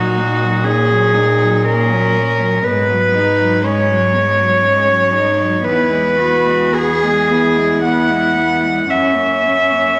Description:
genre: classical, lyrical piece for cello ensemble.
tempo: 53-61 BPM.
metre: 3/4.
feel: rubato.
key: unclear.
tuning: A4 = 436 Hz.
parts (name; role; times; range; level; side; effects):
rich cello; melody; 0.0-10.0 s; F#4 to F#5; -16 LUFS; equal; none.
warm cello; second line; 0.0-10.0 s; B3 to G#4; -24 LUFS; equal; none.
rich cello; accompaniment; 0.0-10.0 s; F#3 to C#4; -24 LUFS; equal; none.
rich cello; bass; 0.0-10.0 s; E2 to A#2; -22 LUFS; equal; none.
room: wet recital hall reverb, RT60 1.8 s.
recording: none.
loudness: -14 LUFS.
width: mono.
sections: 0.0-10.0 A section.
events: none.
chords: 0.0 F#/A#; 2.6 G#m7; 5.6 E; 8.9 F#7.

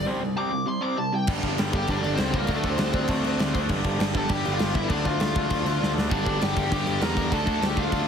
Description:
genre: punk rock.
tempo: 199 BPM.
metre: 4/4.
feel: straight.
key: unclear.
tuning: A4 = 440 Hz.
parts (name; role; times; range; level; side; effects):
smooth overdriven lead guitar; melody; 0.0-8.1 s; A3 to D6; -29 LUFS; left 3 dB; ping-pong delay.
raw garage guitar; riff; 0.0-8.1 s; G2 to D4; -28 LUFS; right 1 dB; overdrive.
fuzz picked electric bass; bass; 0.0-8.0 s; G1 to E2; -29 LUFS; equal; overdrive.
big rock drum kit; drums; 1.3-8.0 s; crash cymbal, kick drum, snare drum; -27 LUFS; equal; none.
tight distorted guitar; riff; 6.1-8.1 s; G2 to D4; -32 LUFS; equal; distortion.
room: light reverb.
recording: heavily compressed radio sound, multiband compression.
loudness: -22 LUFS.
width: side -7 dB against mid.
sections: 0.0-1.3 A section; 1.3-8.1 B section.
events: lead electric guitar solo 0.0-1.3; break 0.1-1.3; drum fill 5.8-6.1.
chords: 0.1 C5; 1.3 G5; 2.5 D5; 3.7 G5; 4.9 Dm; 6.1 Gm; 7.3 Dm.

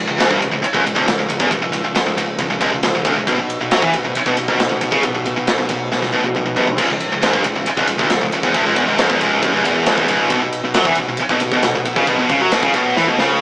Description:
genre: heavy metal.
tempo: 136 BPM.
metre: 4/4.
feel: straight.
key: unclear.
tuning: A4 = 440 Hz.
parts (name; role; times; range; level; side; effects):
heavy high-gain guitar; riff; 0.0-13.4 s; C#2 to F#3; -19 LUFS; right 1 dB; distortion.
high-gain distorted guitar; riff; 0.0-13.4 s; C#2 to F#3; -19 LUFS; left 1 dB; distortion.
growling picked electric bass; bass; 0.0-13.4 s; C#1 to F#2; -25 LUFS; equal; overdrive.
big rock drum kit; drums; 0.2-13.3 s; crash cymbal, kick drum, ride cymbal, snare drum, toms; -19 LUFS; equal; none.
room: moderate studio reverb, RT60 0.6 s.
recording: rough rehearsal-room recording, tube saturation, small speaker sound.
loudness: -14 LUFS.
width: side -23 dB against mid.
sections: 0.0-13.4 A section.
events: drum fill 5.9-6.8, 13.0-13.4.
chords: 0.0 N.C.; 3.3 B5; 6.8 C#m; 10.3 B5.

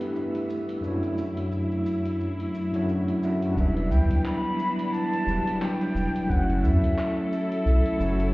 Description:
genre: sunset chillout.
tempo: 88 BPM.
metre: 4/4.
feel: swing 57% on 16ths.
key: E dorian.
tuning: A4 = 440 Hz.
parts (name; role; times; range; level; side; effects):
overdriven tine electric piano; accompaniment; 0.0-8.3 s; F#2 to E5; -27 LUFS; equal; medium tremolo, auto-pan.
clear studio string section; sustained chords; 0.0-8.3 s; F#2 to A4; -30 LUFS; left 1 dB; none.
deep house drum kit; drums; 0.0-8.3 s; handclaps, hi-hat, shaker; -44 LUFS; equal; none.
wind-like tuned noise texture; texture; 0.0-3.6 s; E5 to E6; -48 LUFS; equal; built-in reverb.
breathy mellow silver concert flute; melody; 3.5-8.3 s; E5 to B5; -30 LUFS; left 1 dB; digital delay.
warm sub bass; bass; 3.6-8.3 s; E1 to F#2; -23 LUFS; equal; none.
electronic kick drum; drums; 3.6-7.0 s; none; -26 LUFS; equal; none.
room: moderate concert hall reverb, RT60 2.0 s.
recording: heard muffled through a wall, stone room reverb, EQ.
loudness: -23 LUFS.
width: side -20 dB against mid.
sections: 0.0-3.6 A section; 3.6-8.3 B section.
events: none.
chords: 0.0 G6; 0.8 Dmaj7/F#; 3.6 Em9; 6.3 F#m7.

